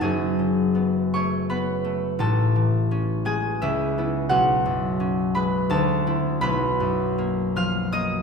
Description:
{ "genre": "classical, solo harp piece", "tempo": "84 BPM", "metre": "3/4", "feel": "uneven beats, rubato", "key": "unclear", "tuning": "A4 = 442 Hz", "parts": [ { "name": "concert harp", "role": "solo", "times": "0.0-8.2 s", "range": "F#1 to E#6", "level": "-20 LUFS", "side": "left 1 dB", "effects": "none" } ], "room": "wet scoring stage reverb, RT60 2.0 s", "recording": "recorded in a church or concert hall", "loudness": "-20 LUFS", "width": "side -5 dB against mid", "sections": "0.0-8.2 A section", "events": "none", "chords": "0.0 F#madd9; 2.2 Amaj7; 3.6 C#m7; 4.3 Bsus2; 5.7 D9; 6.4 Bmaj7#11" }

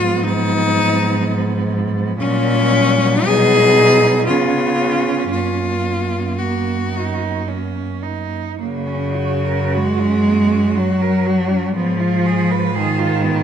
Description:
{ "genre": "classical, lyrical piece for cello ensemble", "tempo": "56 BPM", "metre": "3/4", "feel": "uneven beats, rubato", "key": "F# major", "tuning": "A4 = 445 Hz", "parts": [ { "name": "clear cello", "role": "melody", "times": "0.0-13.4 s", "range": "C#4 to G#4", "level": "-18 LUFS", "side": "left 3 dB", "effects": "none" }, { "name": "rich cello", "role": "second line", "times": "0.0-13.4 s", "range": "A#3 to Cb5", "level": "-24 LUFS", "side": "right 10 dB", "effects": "none" }, { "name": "rich cello", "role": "accompaniment", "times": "0.0-13.4 s", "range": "C#3 to B3", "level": "-20 LUFS", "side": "equal", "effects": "none" }, { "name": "warm cello", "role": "bass", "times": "0.0-13.4 s", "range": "F#2 to C#3", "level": "-21 LUFS", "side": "right 2 dB", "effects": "none" } ], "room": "moderate recital hall reverb, RT60 1.5 s", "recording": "none", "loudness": "-15 LUFS", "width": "side -8 dB against mid", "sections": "0.0-8.6 A section; 8.6-13.4 B section", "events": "none", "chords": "0.0 Fdim/Ab; 2.2 F#/A#; 3.3 G#m7/B; 4.3 C#7; 5.3 F#; 11.8 Fdim/Ab" }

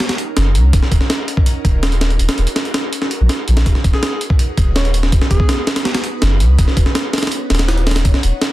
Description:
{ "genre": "drum and bass, jungle", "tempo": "164 BPM", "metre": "4/4", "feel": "straight", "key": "unclear", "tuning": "A4 = 440 Hz", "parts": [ { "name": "ethereal airy pad", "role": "sustained chords", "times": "0.0-8.5 s", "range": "B3 to Db5", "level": "-27 LUFS", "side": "right 1 dB", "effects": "ensemble chorus, built-in reverb, phaser" }, { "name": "breakbeat sampler-style drum kit", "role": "drums", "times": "0.0-8.5 s", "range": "hi-hat, kick drum, snare drum", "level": "-15 LUFS", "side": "equal", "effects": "none" }, { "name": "soft dub sub bass", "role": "bass", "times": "0.4-8.3 s", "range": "Eb1 to Db2", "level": "-14 LUFS", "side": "equal", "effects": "none" }, { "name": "breathy alto saxophone", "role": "melody", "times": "3.9-5.7 s", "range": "Ab4 to Db5", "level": "-29 LUFS", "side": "left 1 dB", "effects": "dub echo" } ], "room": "little or no reverb", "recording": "dense, heavily limited modern master", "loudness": "-13 LUFS", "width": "side -16 dB against mid", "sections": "0.0-8.5 A section", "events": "none", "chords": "0.0 Ebm7; 3.7 B/D#" }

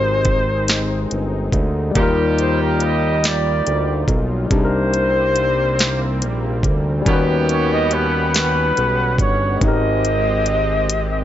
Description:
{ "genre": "slow six-eight R&B", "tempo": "47 BPM (dotted quarters)", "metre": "6/8", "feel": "straight", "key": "Eb major", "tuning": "A4 = 441 Hz", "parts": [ { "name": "breathy flugelhorn", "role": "melody", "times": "0.0-11.2 s", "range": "Bb4 to Eb5", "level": "-20 LUFS", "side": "equal", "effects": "none" }, { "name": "barky tine electric piano", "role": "accompaniment", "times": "0.0-11.2 s", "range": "G3 to B4", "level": "-24 LUFS", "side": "left 5 dB", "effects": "overdrive" }, { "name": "warm analog pad", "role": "sustained chords", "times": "0.0-11.2 s", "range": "C3 to F#5", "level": "-28 LUFS", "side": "equal", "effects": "chorus" }, { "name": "fat analog bass", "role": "bass", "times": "0.0-11.2 s", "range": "G1 to Eb2", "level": "-20 LUFS", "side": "equal", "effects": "none" }, { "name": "smooth R&B drum kit", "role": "drums", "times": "0.2-11.1 s", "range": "hi-hat, kick drum, snare drum", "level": "-19 LUFS", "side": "equal", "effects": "none" }, { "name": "clear horn section", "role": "stabs", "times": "2.0-9.2 s", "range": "G3 to G4", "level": "-25 LUFS", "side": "right 4 dB", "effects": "none" } ], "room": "light reverb", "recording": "nothing above 7.6 kHz", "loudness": "-15 LUFS", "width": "side -11 dB against mid", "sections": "0.0-11.2 A section", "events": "drum fill 9.6-11.2", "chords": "0.0 Abmaj9; 2.0 Ebmaj7; 4.5 Cm9; 7.1 Eb7alt; 9.6 Abmaj9" }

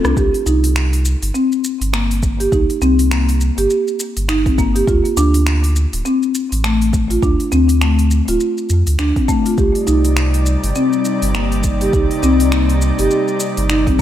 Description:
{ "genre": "organic downtempo", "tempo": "102 BPM", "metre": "4/4", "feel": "swing 59% on 16ths", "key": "C dorian", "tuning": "A4 = 440 Hz", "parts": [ { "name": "marimba with soft mallets", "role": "arpeggios", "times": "0.0-14.0 s", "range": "A3 to G4", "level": "-17 LUFS", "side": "left 1 dB", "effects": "digital delay" }, { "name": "warm sub bass", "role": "bass", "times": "0.0-14.0 s", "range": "D1 to F2", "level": "-16 LUFS", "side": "equal", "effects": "tube saturation, sidechain pumping" }, { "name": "deep house drum kit", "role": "drums", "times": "0.0-14.0 s", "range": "finger snaps, hi-hat, rim click, shaker", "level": "-24 LUFS", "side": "equal", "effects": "studio reverb" }, { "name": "electronic kick drum", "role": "drums", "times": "0.2-14.0 s", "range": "none", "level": "-18 LUFS", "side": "equal", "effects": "studio reverb" }, { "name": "airy breathy pad", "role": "sustained chords", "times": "9.7-14.0 s", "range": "C3 to D5", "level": "-21 LUFS", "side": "equal", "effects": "chorus, sidechain pumping" } ], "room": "light reverb, digital ambience", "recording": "none", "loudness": "-13 LUFS", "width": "side -11 dB against mid", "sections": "0.2-14.0 A section", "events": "break 0.0; drum fill 0.0", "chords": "0.2 C7(no3); 4.9 Dm; 9.6 Cm7" }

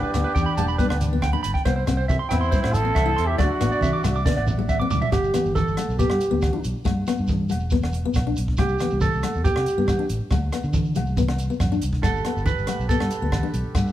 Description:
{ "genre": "highlife guitar band", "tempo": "139 BPM", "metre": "4/4", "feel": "straight", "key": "G major", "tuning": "A4 = 441 Hz", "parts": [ { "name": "growling trumpet", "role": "melody", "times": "0.0-4.2 s", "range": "E4 to A4", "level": "-27 LUFS", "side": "right 2 dB", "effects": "none" }, { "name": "breathy alto saxophone", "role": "second line", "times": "0.0-4.2 s", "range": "C4 to E4", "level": "-31 LUFS", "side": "left 3 dB", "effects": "analog delay" }, { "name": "fingerpicked steel-string acoustic guitar", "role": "accompaniment", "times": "0.0-13.9 s", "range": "A3 to E4", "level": "-28 LUFS", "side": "left 6 dB", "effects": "none" }, { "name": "mellow accordion", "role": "sustained chords", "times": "0.0-5.1, 12.0-13.9 s", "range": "G4 to A5", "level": "-38 LUFS", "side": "right 2 dB", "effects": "none" }, { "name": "clean electric guitar", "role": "arpeggios", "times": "0.0-13.5 s", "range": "G4 to D6", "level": "-26 LUFS", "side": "right 3 dB", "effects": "none" }, { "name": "compact cocktail drum kit", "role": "drums", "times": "0.1-13.8 s", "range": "hi-hat, kick drum, rim click, snare drum, toms", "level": "-26 LUFS", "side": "equal", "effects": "none" }, { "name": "agogo bells", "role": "percussion", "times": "0.1-13.9 s", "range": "none", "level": "-37 LUFS", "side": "left 2 dB", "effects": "none" }, { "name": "congas", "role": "percussion", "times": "0.1-13.8 s", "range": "none", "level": "-31 LUFS", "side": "right 1 dB", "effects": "none" }, { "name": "shekere", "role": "percussion", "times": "0.1-13.9 s", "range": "none", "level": "-31 LUFS", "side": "right 2 dB", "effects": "none" }, { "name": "fingered electric bass", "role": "bass", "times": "0.2-13.9 s", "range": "E1 to D3", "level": "-25 LUFS", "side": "equal", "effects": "none" } ], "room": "moderate large studio reverb, RT60 1.3 s", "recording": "band playing live in one room", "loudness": "-20 LUFS", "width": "side -13 dB against mid", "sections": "0.0-5.1 A section; 5.1-13.9 B section", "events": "drum fill 4.3-5.1; clean electric guitar solo 5.1-13.9", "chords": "0.0 Gadd9; 1.7 C; 3.4 Dadd9; 5.1 Gadd9; 8.6 C5; 10.3 D5; 12.0 Gadd9" }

